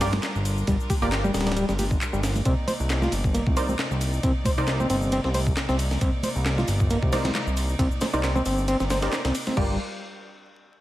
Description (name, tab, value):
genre	breakbeat, breaks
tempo	135 BPM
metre	4/4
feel	swing 55% on 16ths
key	unclear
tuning	A4 = 440 Hz
part	rich chamber string section	sustained chords	0.0-9.8 s	C3 to D5	-34 LUFS	equal	sidechain pumping
part	overdriven reed electric piano	riff	0.0-9.8 s	G3 to C5	-28 LUFS	equal	medium tremolo, tube saturation, ping-pong delay
part	orchestra-hit-like synth stab	stabs	0.0-9.7 s	Eb4 to D5	-32 LUFS	right 1 dB	built-in reverb, ping-pong delay
part	fat analog bass	bass	0.0-9.8 s	D1 to C2	-26 LUFS	equal	none
part	breakbeat sampler-style drum kit	drums	0.0-9.7 s	crash cymbal, kick drum, ride cymbal, snare drum	-27 LUFS	equal	none
part	house drum kit	drums	0.0-9.5 s	handclaps, hi-hat, shaker	-34 LUFS	left 1 dB	none
part	congas	percussion	0.1-9.6 s	none	-34 LUFS	right 2 dB	none
room	little or no reverb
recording	vinyl crackle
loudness	-22 LUFS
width	side -15 dB against mid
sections	0.0-9.6 A section; 9.6-10.8 B section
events	drop 0.0-9.6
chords	0.0 Gm7; 2.5 Cm9; 9.6 Gm7